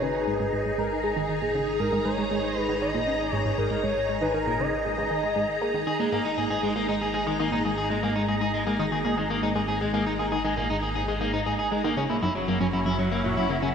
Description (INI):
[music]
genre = ambient, sequencer-driven space music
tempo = 118 BPM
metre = 4/4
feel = straight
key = unclear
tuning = A4 = 440 Hz
[part]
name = pulse-width lead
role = melody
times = 0.0-5.9 s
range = G#4 to D#5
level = -29 LUFS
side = equal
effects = chorus, cassette tape, analog delay
[part]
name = phased string machine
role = sustained chords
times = 0.0-13.7 s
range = F#3 to A#5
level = -29 LUFS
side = equal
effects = ensemble chorus, phaser
[part]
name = tight sequenced synth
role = riff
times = 0.0-13.7 s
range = F#2 to A#3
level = -29 LUFS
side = right 1 dB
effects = chorus, phaser, analog delay
[part]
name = analog drone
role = bass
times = 0.0-13.7 s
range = F#1 to G#1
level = -36 LUFS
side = equal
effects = chorus, phaser
[part]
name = electric guitar at the edge of break-up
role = arpeggios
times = 5.9-13.7 s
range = F#3 to G#4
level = -28 LUFS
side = left 1 dB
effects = auto-pan, analog delay
[sound]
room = wet lush hall reverb, RT60 2.5 s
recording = dreamy mix soaked in reverb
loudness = -24 LUFS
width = side -7 dB against mid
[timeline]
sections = 0.0-13.7 A section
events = fade-in on synth drone 0.0-13.7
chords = 0.0 G#sus2; 12.0 F#7